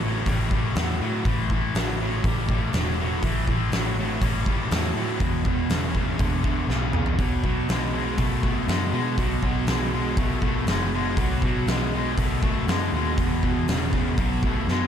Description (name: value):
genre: blues rock power trio and southern rock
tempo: 121 BPM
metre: 4/4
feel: straight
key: unclear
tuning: A4 = 440 Hz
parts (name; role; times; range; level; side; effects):
- distorted electric guitar; riff; 0.0-14.9 s; E2 to A3; -25 LUFS; equal; distortion
- vintage muted picked electric bass; bass; 0.0-14.9 s; E1 to B2; -28 LUFS; equal; none
- huge arena drum kit; drums; 0.3-14.8 s; hi-hat, kick drum, snare drum, toms; -26 LUFS; equal; none
room: moderate lush hall reverb, RT60 2.4 s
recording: big arena sound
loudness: -22 LUFS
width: side -8 dB against mid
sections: 0.0-14.9 A section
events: drum fill 6.7-7.2, 14.7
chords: 0.0 A5; 5.2 E5; 7.2 B7(no3); 13.2 E5; 14.2 B5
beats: 0.26 0.76 | 1.25 1.75 2.24 2.73 | 3.23 3.72 4.22 4.71 | 5.21 5.70 6.20 6.70 | 7.19 7.69 8.19 8.68 | 9.18 9.68 10.18 10.68 | 11.18 11.67 12.17 12.67 | 13.17 13.67 14.17 14.67